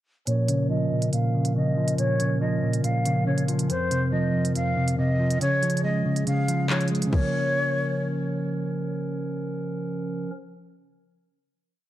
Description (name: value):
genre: hip hop, drill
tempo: 140 BPM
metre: 4/4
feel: half-time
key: Bb minor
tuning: A4 = 441 Hz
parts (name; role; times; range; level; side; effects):
- breathy jazz flute; melody; 0.3-8.4 s; C5 to F5; -28 LUFS; equal; low-pass filter, ping-pong delay
- mellow electric guitar; accompaniment; 0.3-10.4 s; F2 to Db4; -24 LUFS; equal; low-pass filter
- pipe organ, stopped flute; sustained chords; 0.3-10.3 s; F3 to Bb4; -32 LUFS; right 2 dB; low-pass filter
- drill drum kit; drums; 0.3-7.2 s; crash cymbal, handclaps, hi-hat, kick drum; -30 LUFS; equal; none
room: light reverb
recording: dark, warm production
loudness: -22 LUFS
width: side -14 dB against mid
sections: 0.3-7.1 breakdown; 7.1-10.6 final chord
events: filter sweep 0.3-7.1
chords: 0.3 Bbm; 3.7 Fsus4; 5.4 Db; 7.1 Bbm